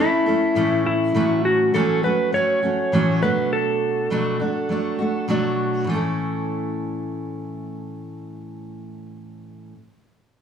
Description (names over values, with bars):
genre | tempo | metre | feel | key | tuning
pop | 102 BPM | 4/4 | swing 60% on 16ths | A major | A4 = 440 Hz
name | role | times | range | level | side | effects
clean lap steel guitar | melody | 0.0-5.3 s | E4 to C#5 | -20 LUFS | left 1 dB | none
fingerpicked steel-string acoustic guitar | accompaniment | 0.0-9.8 s | A2 to A4 | -23 LUFS | right 1 dB | none
room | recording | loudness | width
light reverb | band playing live in one room, studio reverb | -19 LUFS | side -7 dB against mid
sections
0.0-5.9 A section; 5.9-8.2 B section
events
none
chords
0.0 A; 1.1 F#m7/A; 3.2 Bm7; 5.9 A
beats
0.56 | 1.15 1.74 2.33 2.92 | 3.51 4.10 4.69 5.28 | 5.87 6.46 7.05 7.65